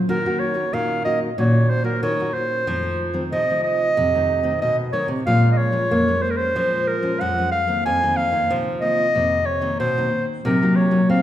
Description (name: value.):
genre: samba and choro.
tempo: 93 BPM.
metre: 4/4.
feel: straight.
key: unclear.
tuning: A4 = 440 Hz.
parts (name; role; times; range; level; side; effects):
nylon-string guitar; accompaniment; 0.0-11.2 s; F2 to Gb4; -24 LUFS; left 1 dB; none.
clear clarinet; melody; 0.1-11.2 s; Bb4 to Ab5; -21 LUFS; right 1 dB; none.
nylon-string guitar; bass; 0.1-11.2 s; F2 to C4; -23 LUFS; equal; none.
room: wet recital hall reverb, RT60 1.5 s.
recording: recorded in a church or concert hall.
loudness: -18 LUFS.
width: side -12 dB against mid.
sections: 0.0-11.2 A section.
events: none.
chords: 0.1 Ebm7; 2.7 F7; 5.3 Bbm7; 7.9 F7sus4; 10.5 Cm7b5.